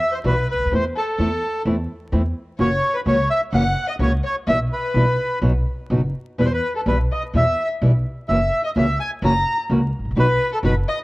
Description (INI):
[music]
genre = tango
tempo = 127 BPM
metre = 4/4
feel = rubato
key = E harmonic minor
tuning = A4 = 439 Hz
[part]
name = bandoneon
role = melody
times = 0.0-11.0 s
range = A4 to A#5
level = -22 LUFS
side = equal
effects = none
[part]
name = warm violin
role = second line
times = 0.0-11.0 s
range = A4 to A#5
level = -26 LUFS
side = left 2 dB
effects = none
[part]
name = nylon-string guitar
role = accompaniment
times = 0.2-10.7 s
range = B2 to F#4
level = -21 LUFS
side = equal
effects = none
[part]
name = upright bass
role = bass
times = 0.2-10.8 s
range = F#1 to E2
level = -22 LUFS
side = equal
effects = none
[sound]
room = moderate spring reverb, RT60 1.7 s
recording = worn, warbling old tape, cassette tape, vinyl crackle, warbly pitch drift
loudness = -18 LUFS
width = side -20 dB against mid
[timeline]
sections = 0.0-11.0 A section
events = none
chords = 0.0 Em; 0.7 Am/E; 2.6 F#7; 4.5 Em/B; 5.4 B; 6.4 Em; 8.3 F#7; 10.2 B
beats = 0.24 | 0.71 1.18 1.65 2.12 | 2.59 3.06 3.53 4.00 | 4.47 4.94 5.42 5.90 | 6.38 6.86 7.34 7.81 | 8.29 8.76 9.23 9.70 | 10.16 10.63